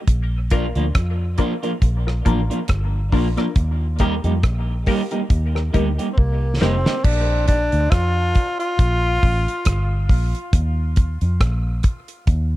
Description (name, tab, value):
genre	dub reggae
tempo	69 BPM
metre	4/4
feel	swing 56% on 16ths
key	Bb major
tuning	A4 = 443 Hz
part	vintage muted fingered electric bass	bass	0.1-12.6 s	F1 to F2	-20 LUFS	equal	none
part	damped 70s drum kit	drums	0.1-12.5 s	crash cymbal, hi-hat, kick drum, rim click, snare drum	-18 LUFS	equal	none
part	electric guitar at the edge of break-up	accompaniment	0.5-6.9 s	F3 to G4	-26 LUFS	right 2 dB	high-pass filter, dub echo
part	filtered dub chord stab	stabs	0.5-6.8 s	Bb3 to Bb4	-29 LUFS	left 4 dB	phaser, high-pass filter, dub echo
part	breathy tenor saxophone	melody	6.1-10.1 s	Bb3 to F4	-24 LUFS	left 1 dB	dub echo
room	small room ambience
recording	dark, warm production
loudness	-17 LUFS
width	side -16 dB against mid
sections	0.0-7.0 A section; 7.0-12.6 B section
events	drum fill 6.2-7.0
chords	0.1 Bb; 3.6 Eb; 7.0 Bb; 10.5 Eb5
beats	| 0.08 0.95 1.82 2.69 | 3.56 4.43 5.30 6.17 | 7.04 7.91 8.79 9.66 | 10.53 11.40 12.27